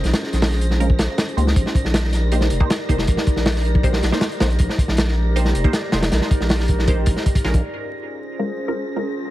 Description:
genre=drum and bass, jungle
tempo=158 BPM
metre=4/4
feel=straight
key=unclear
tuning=A4 = 441 Hz
part: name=warbly tape-like pad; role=sustained chords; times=0.0-9.3 s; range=Db4 to D5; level=-28 LUFS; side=left 1 dB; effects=chorus, built-in reverb
part: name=saturated sub bass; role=bass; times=0.0-7.6 s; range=F1 to Db2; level=-19 LUFS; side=equal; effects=none
part: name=crunchy breakbeat drum kit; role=drums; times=0.0-7.6 s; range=hi-hat, kick drum, snare drum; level=-19 LUFS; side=equal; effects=none
part: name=wind-like tuned noise texture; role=texture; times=0.0-9.3 s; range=Bb6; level=-36 LUFS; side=right 2 dB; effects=built-in reverb
part: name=filtered dub chord stab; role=stabs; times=0.8-9.0 s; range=Ab3 to C5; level=-28 LUFS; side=right 1 dB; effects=phaser, dub echo
room=light reverb, studio ambience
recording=heavily compressed radio sound, vinyl crackle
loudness=-17 LUFS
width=side -15 dB against mid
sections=0.0-7.6 A section; 7.6-9.3 B section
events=filter sweep on synth stab 0.0-7.6, 7.6-9.3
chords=0.0 Bbm7; 1.6 Cm7; 7.6 Bbm7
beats=| 0.04 0.42 0.80 1.18 | 1.56 1.94 2.32 2.70 | 3.08 3.46 3.84 4.22 | 4.60 4.98 5.36 5.74 | 6.12 6.50 6.88 7.26 | 7.64 8.02 8.40 8.78 | 9.15

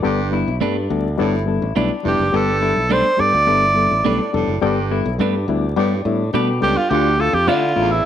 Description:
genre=soul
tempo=105 BPM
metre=4/4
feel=straight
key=unclear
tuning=A4 = 440 Hz
part: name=reed electric piano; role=accompaniment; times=0.0-7.9 s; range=G3 to A4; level=-21 LUFS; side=left 6 dB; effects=overdrive
part: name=breathy baritone saxophone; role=riff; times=0.0-8.0 s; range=D2 to A2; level=-26 LUFS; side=right 10 dB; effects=none
part: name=clean electric guitar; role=riff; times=0.0-8.0 s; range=D4 to G4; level=-28 LUFS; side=left 10 dB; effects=none
part: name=modern bright fingered electric bass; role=bass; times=0.0-8.0 s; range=F1 to D3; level=-22 LUFS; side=right 1 dB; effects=none
part: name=clean electric guitar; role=stabs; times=0.6-7.6 s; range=A3 to D5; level=-24 LUFS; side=right 8 dB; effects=none
part: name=breathy tenor saxophone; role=melody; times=2.1-8.1 s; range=E4 to D5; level=-17 LUFS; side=right 2 dB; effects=none
room=light reverb, studio reverb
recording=1960s-style stereo with parts hard left and right, vinyl crackle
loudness=-15 LUFS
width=side -10 dB against mid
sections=0.0-6.9 A section; 6.9-8.1 B section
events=none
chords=0.0 Gadd9; 6.9 Dm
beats=| 0.05 0.62 1.19 1.76 | 2.34 2.91 3.48 4.05 | 4.62 5.20 5.77 6.34 | 6.91 7.48 8.05

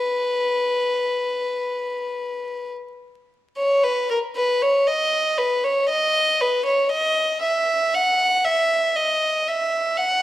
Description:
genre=classical, baroque-style suite movement for unaccompanied violin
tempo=54-60 BPM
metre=4/4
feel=rubato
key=B major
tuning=A4 = 441 Hz
part: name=clear violin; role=solo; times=0.0-10.2 s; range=A#4 to F#5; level=-19 LUFS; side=equal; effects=none
room=moderate recital hall reverb, RT60 1.4 s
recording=vinyl crackle, lossy compression artefacts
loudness=-19 LUFS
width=side -14 dB against mid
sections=0.0-3.8 A section; 3.8-10.2 B section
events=none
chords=none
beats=0.56 1.66 2.75 | 3.84 4.88 5.90 6.93 | 7.95 8.97 9.98

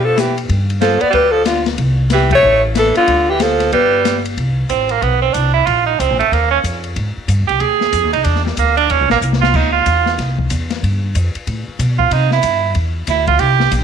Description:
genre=jazz, small-group swing and bop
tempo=186 BPM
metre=4/4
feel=swing 62% on 8ths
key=C major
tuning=A4 = 440 Hz
part: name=warm alto saxophone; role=melody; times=0.0-4.2 s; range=F4 to D5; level=-14 LUFS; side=left 3 dB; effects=none
part: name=bright tenor saxophone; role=second line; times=0.0-13.7 s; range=D3 to Ab4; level=-15 LUFS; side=right 10 dB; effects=none
part: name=upright bass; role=bass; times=0.0-13.8 s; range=G1 to C3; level=-17 LUFS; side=equal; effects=none
part: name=open jazz drum kit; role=drums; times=0.2-13.8 s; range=crash cymbal, hi-hat, kick drum, ride cymbal, snare drum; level=-23 LUFS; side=left 6 dB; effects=none
room=light reverb, studio reverb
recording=1960s-style stereo with parts hard left and right, lossy compression artefacts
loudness=-12 LUFS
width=side -7 dB against mid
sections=0.0-4.4 A section; 4.4-13.8 B section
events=band accent 2.3; tenor saxophone solo 4.4-13.8; drum fill 9.2-9.5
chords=0.5 G5; 1.8 C; 2.4 A; 3.1 Dm; 3.7 G; 4.4 Amadd9; 5.7 Bbm7; 6.3 Ebsus2; 7.0 Ab; 8.3 Gm6; 8.9 Eb5; 9.5 Dm9; 10.8 G9; 12.1 C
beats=0.17 | 0.49 0.82 1.14 1.46 | 1.79 2.11 2.43 2.76 | 3.08 3.40 3.73 4.05 | 4.37 4.70 5.02 5.34 | 5.67 5.99 6.32 6.64 | 6.96 7.29 7.61 7.93 | 8.25 8.58 8.90 9.22 | 9.54 9.87 10.19 10.51 | 10.83 11.15 11.48 11.80 | 12.12 12.44 12.76 13.09 | 13.41 13.73

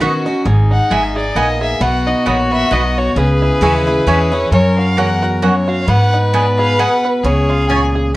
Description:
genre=bluegrass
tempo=133 BPM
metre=3/4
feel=swing 56% on 8ths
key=unclear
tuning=A4 = 440 Hz
part: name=bluegrass banjo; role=melody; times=0.0-8.2 s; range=G#3 to B4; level=-23 LUFS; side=right 3 dB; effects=none
part: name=clear fiddle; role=second line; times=0.0-8.1 s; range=D#4 to C#5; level=-21 LUFS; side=left 1 dB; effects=none
part: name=picked steel-string acoustic guitar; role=accompaniment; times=0.0-8.1 s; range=E2 to F#4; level=-18 LUFS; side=left 1 dB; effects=none
part: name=mandolin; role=stabs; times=0.0-7.8 s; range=A#3 to C#6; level=-18 LUFS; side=right 2 dB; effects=none
part: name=upright bass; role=bass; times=0.0-8.2 s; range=G#1 to G#2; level=-17 LUFS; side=equal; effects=none
part: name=clear fiddle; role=melody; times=0.7-7.8 s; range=B4 to G#5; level=-19 LUFS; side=left 1 dB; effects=none
room=moderate studio reverb, RT60 0.6 s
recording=worn, warbling old tape, cassette tape, warbly pitch drift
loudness=-12 LUFS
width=side -17 dB against mid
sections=0.5-8.2 A section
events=none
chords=0.5 G#m; 1.8 B; 3.2 C#m; 4.5 F#; 5.9 G#m; 7.2 C#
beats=0.01 | 0.46 0.91 1.36 | 1.81 2.27 2.72 | 3.17 3.62 4.08 | 4.53 4.98 5.43 | 5.88 6.34 6.79 | 7.24 7.69 8.15

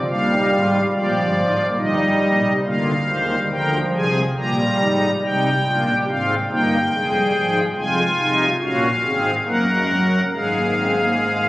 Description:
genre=classical, baroque-style 4-part fugue for pipe organ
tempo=70 BPM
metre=3/4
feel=straight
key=Db major from 7.8 s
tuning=A4 = 440 Hz
part: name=pipe organ, strings celeste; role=solo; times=0.1-11.5 s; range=F1 to Bb5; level=-17 LUFS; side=equal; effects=none
room=wet church reverb, RT60 3.7 s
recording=recorded on a phone in the room, club reverb, compression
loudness=-17 LUFS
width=side -18 dB against mid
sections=0.0-2.7 A section; 2.7-11.5 B section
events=none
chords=0.1 Bb; 1.8 Eb/G; 2.7 Ddim; 4.4 Gm7/Bb; 5.2 Cm; 6.9 Fm; 7.8 Db/F; 9.5 Gbadd9; 10.3 Ab69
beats=| 0.08 0.93 1.79 | 2.65 3.52 4.38 | 5.23 6.07 6.92 | 7.76 8.61 9.47 | 10.33 11.20

